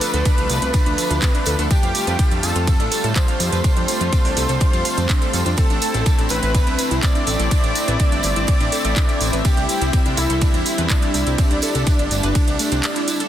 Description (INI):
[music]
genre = melodic techno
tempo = 124 BPM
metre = 4/4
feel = straight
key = unclear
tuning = A4 = 442 Hz
[part]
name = fat analog lead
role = melody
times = 0.0-13.2 s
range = D4 to D5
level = -25 LUFS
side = equal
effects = chorus, cassette tape, sidechain pumping, dub echo
[part]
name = airy dreamy lead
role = second line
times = 0.0-13.2 s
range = D5 to D6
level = -31 LUFS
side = equal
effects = chorus, sidechain pumping, dub echo
[part]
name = deep dark ambient pad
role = sustained chords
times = 0.0-13.3 s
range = G3 to E5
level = -32 LUFS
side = equal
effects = none
[part]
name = wide unison pluck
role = arpeggios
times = 0.0-13.3 s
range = A3 to F5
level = -28 LUFS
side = right 1 dB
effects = sidechain pumping, dub echo
[part]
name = brassy analog pad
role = stabs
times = 0.0-11.6 s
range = F3 to F4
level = -29 LUFS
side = left 3 dB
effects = chorus, sidechain pumping, dub echo
[part]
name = bowed-like drone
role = drone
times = 0.0-13.3 s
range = D3 to A3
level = -35 LUFS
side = right 2 dB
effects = none
[part]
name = house drum kit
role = drums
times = 0.0-13.3 s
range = handclaps, hi-hat, ride cymbal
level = -26 LUFS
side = right 3 dB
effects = none
[part]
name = tambourine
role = percussion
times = 0.0-13.3 s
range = none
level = -30 LUFS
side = right 4 dB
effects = none
[part]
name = dark studio string section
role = texture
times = 0.0-13.3 s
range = C4 to E5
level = -30 LUFS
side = equal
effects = sidechain pumping
[part]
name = fat analog bass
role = bass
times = 0.1-12.8 s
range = G1 to A2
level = -22 LUFS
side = equal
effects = sidechain pumping
[part]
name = electronic kick drum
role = drums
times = 0.3-12.5 s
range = none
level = -18 LUFS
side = equal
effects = none
[sound]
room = little or no reverb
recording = dense, heavily limited modern master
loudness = -16 LUFS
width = side -11 dB against mid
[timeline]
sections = 0.0-13.3 A section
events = break 12.8-13.3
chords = 0.0 Dm; 1.7 Fadd9; 5.6 Am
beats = 0.26 0.74 1.22 | 1.71 2.19 2.67 3.16 | 3.64 4.13 4.61 5.09 | 5.58 6.06 6.54 7.03 | 7.51 8.00 8.48 8.96 | 9.45 9.93 10.42 10.90 | 11.38 11.87 12.35 12.84